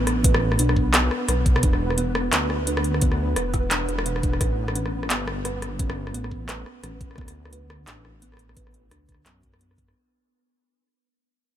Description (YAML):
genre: half-time drum and bass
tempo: 173 BPM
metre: 4/4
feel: swing 58% on 16ths, half-time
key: unclear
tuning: A4 = 440 Hz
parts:
  - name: kalimba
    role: arpeggios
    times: 0.0-9.8 s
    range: B2 to B4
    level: -29 LUFS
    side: right 1 dB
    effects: low-pass filter, digital delay
  - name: dark detuned saw bass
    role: bass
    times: 0.0-9.9 s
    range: E1 to F#2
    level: -26 LUFS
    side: equal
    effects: none
  - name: pulsing gated texture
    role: texture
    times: 0.0-10.0 s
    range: B3 to B4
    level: -33 LUFS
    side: right 1 dB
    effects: chorus, built-in reverb
  - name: drum and bass drum kit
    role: drums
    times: 0.1-9.9 s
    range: handclaps, hi-hat, rim click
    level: -26 LUFS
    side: left 1 dB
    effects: none
  - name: electronic kick drum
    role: drums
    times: 0.2-9.9 s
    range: none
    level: -22 LUFS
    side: equal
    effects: none
room: light reverb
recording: none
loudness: -20 LUFS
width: side -11 dB against mid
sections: 0.0-10.0 A section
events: fade-out 0.0-10.0; filter sweep on kalimba 0.0-10.0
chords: 0.0 Bm; 1.6 E5; 4.4 Aadd9; 7.2 D